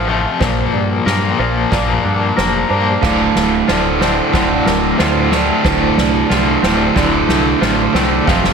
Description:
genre	post-rock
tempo	92 BPM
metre	4/4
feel	straight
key	D minor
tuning	A4 = 439 Hz
part	felt-muted upright piano	arpeggios	0.0-8.5 s	Bb4 to F5	-25 LUFS	right 7 dB	digital delay
part	twangy electric guitar	arpeggios	0.0-8.5 s	D2 to Bb4	-22 LUFS	equal	digital delay, slapback echo
part	cranked stack guitar	riff	0.0-8.5 s	D2 to Bb3	-17 LUFS	left 5 dB	overdrive, tremolo, slapback echo
part	growling fingered electric bass	bass	0.0-8.5 s	D1 to G2	-21 LUFS	equal	overdrive
part	soft-mallet drum kit	drums	0.4-8.5 s	crash cymbal, kick drum, snare drum	-20 LUFS	equal	none
part	crunchy overdriven guitar	riff	3.0-8.5 s	D2 to F3	-17 LUFS	right 11 dB	none
room	moderate lush hall reverb, RT60 2.7 s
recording	big arena sound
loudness	-12 LUFS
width	side -6 dB against mid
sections	0.0-8.5 A section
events	build-up 0.0-8.5; drum fill 0.0-8.5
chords	0.4 Bbadd9; 3.0 Dm7

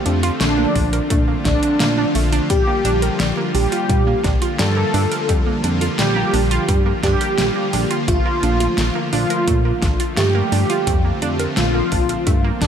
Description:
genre	synthwave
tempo	86 BPM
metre	4/4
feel	straight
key	Bb major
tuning	A4 = 440 Hz
part	mellow synth brass	melody	0.0-12.7 s	D4 to A4	-22 LUFS	equal	chorus, cassette tape, tape echo
part	FM electric piano with soft pad layer	second line	0.0-12.7 s	D4 to A4	-28 LUFS	right 2 dB	none
part	soft supersaw	sustained chords	0.0-12.7 s	D3 to F4	-24 LUFS	equal	vintage 12-bit sampler grit, sidechain pumping
part	analog pluck	arpeggios	0.0-12.7 s	G3 to Bb4	-25 LUFS	right 5 dB	chorus, cassette tape, digital delay
part	chorused synth bass	bass	0.1-12.7 s	Bb1 to Bb2	-20 LUFS	left 1 dB	none
part	pop drum kit	drums	0.1-12.7 s	hi-hat, snare drum	-24 LUFS	equal	gated reverb
part	electronic kick drum	drums	0.8-12.7 s	none	-20 LUFS	left 1 dB	none
room	light reverb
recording	none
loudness	-15 LUFS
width	side -8 dB against mid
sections	0.0-12.7 A section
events	none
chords	0.0 Bbmaj7; 2.5 Gm7/Bb; 8.1 Bbmaj7

